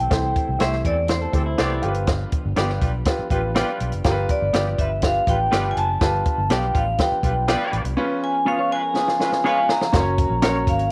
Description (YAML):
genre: uptempo 1960s-style soul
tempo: 122 BPM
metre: 4/4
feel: straight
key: unclear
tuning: A4 = 438 Hz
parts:
  - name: vibraphone with hard mallets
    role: melody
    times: 0.0-10.9 s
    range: C5 to Bb5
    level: -25 LUFS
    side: equal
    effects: none
  - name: mellow tonewheel organ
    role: sustained chords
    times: 0.0-10.9 s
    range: E3 to Bb4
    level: -38 LUFS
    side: equal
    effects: chorus vibrato, stopped rotary speaker
  - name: vintage muted fingered electric bass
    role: bass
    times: 0.0-10.9 s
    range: F#1 to E2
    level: -27 LUFS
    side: equal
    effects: none
  - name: dark baby grand piano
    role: accompaniment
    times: 0.1-10.8 s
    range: Db4 to Db5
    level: -29 LUFS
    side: equal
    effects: none
  - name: compact cocktail drum kit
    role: drums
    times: 0.1-10.9 s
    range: hi-hat, kick drum, snare drum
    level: -25 LUFS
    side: equal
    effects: none
  - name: semi-hollow electric guitar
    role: stabs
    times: 0.6-10.6 s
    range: A3 to D5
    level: -31 LUFS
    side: equal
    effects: slapback echo
  - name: warm horn section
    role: second line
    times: 0.8-9.8 s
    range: E3 to D5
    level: -34 LUFS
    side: equal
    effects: none
  - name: electric guitar through a small old amp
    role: riff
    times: 1.1-1.8, 8.6-9.8 s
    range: E4 to Db5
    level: -34 LUFS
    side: equal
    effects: none
room: moderate spring reverb, RT60 2.0 s, small room reverb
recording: none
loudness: -21 LUFS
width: mono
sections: 0.0-9.9 A section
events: vibraphone solo 0.0-9.9; drum fill 9.0-9.9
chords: 0.0 C6; 1.8 G7; 8.0 Db7; 9.9 Gb